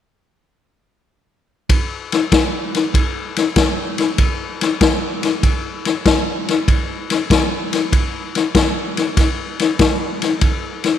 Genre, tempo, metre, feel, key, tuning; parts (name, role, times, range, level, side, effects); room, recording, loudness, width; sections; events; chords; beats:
blues; 96 BPM; 4/4; swing 68% on 8ths
vintage drum kit; drums; 1.7-10.9 s; kick drum, ride cymbal, snare drum; -15 LUFS; left 2 dB
moderate plate reverb, RT60 2.5 s; 1960s-style stereo; -15 LUFS; side -10 dB against mid
1.7-11.0 A section
| 1.70 2.32 2.94 3.56 | 4.19 4.81 5.43 6.05 | 6.68 7.30 7.92 8.55 | 9.17 9.79 10.42